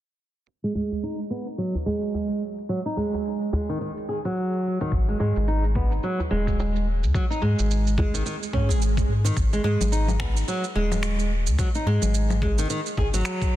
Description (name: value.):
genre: organic downtempo.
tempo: 108 BPM.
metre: 4/4.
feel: swing 59% on 16ths.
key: G# minor.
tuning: A4 = 440 Hz.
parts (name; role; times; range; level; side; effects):
electronic shaker, congas and finger snaps; drums; 0.5-13.5 s; none; -32 LUFS; left 1 dB; studio reverb, soft clipping on snare.
flamenco guitar; arpeggios; 0.6-13.6 s; D#3 to G#4; -26 LUFS; right 1 dB; low-pass filter, digital delay.
djembe; percussion; 0.8-9.3 s; none; -32 LUFS; equal; none.
warm sub bass; bass; 4.9-13.2 s; D#1 to G#2; -23 LUFS; equal; none.
electronic kick drum; drums; 4.9-13.5 s; none; -26 LUFS; equal; studio reverb.
swell; sound effects; 8.5-9.4 s; none; -33 LUFS; right 5 dB; none.
room: light reverb, digital ambience.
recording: dense, heavily limited modern master, low-pass filter.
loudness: -22 LUFS.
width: side -13 dB against mid.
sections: 0.5-9.4 A section; 9.4-13.6 B section.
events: filter sweep on nylon-string guitar 0.5-9.4; filter sweep 0.5-9.4; swell 8.5-9.4.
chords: 0.5 G#7(no3); 4.9 G#5.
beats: | 0.48 1.03 1.59 2.14 | 2.70 3.25 3.81 4.37 | 4.92 5.48 6.03 6.59 | 7.14 7.70 8.26 8.81 | 9.37 9.92 10.48 11.03 | 11.59 12.14 12.70 13.26.